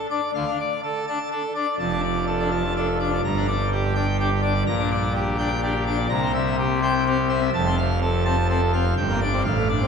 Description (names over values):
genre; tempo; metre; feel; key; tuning
classical, organ toccata; 125 BPM; 3/4; straight; D minor; A4 = 440 Hz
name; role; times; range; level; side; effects
pipe organ, full organ; solo; 0.0-9.9 s; F1 to Bb5; -20 LUFS; equal; none
room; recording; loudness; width
wet church reverb, RT60 3.0 s; none; -20 LUFS; side -6 dB against mid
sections
0.3-9.9 A section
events
none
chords
0.3 Dm; 1.8 Dm/F; 3.2 Gm; 4.7 Gm/Bb; 6.1 C7; 7.5 F; 9.0 Gm